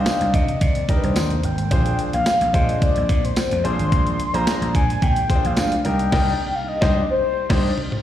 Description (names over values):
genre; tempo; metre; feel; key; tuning
early-eighties boogie funk; 109 BPM; 4/4; straight; C minor; A4 = 440 Hz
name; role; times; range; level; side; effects
mellow horn-like synth lead; melody; 0.0-8.0 s; B4 to C6; -23 LUFS; left 2 dB; chorus, plate reverb, slapback echo, tape echo
clear baby grand piano; accompaniment; 0.0-7.7 s; C4 to C5; -27 LUFS; left 2 dB; plate reverb, slapback echo
string machine, violins; sustained chords; 0.0-8.0 s; C3 to Eb4; -31 LUFS; right 1 dB; ensemble chorus, plate reverb
vintage slap bass; bass; 0.0-7.7 s; Ab1 to C3; -22 LUFS; equal; none
clean 12-bit digital drum machine; drums; 0.1-8.0 s; crash cymbal, hi-hat, kick drum, snare drum, toms; -21 LUFS; equal; none
tambourine; percussion; 0.1-5.7 s; none; -36 LUFS; right 5 dB; slapback echo
room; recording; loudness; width
light reverb; live gig heard through the venue's PA, recital hall reverb; -17 LUFS; side -11 dB against mid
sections
0.0-8.0 A section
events
band accent 6.1-8.0; drum fill 7.8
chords
0.0 Cm9; 1.7 Bb7; 5.8 Cm9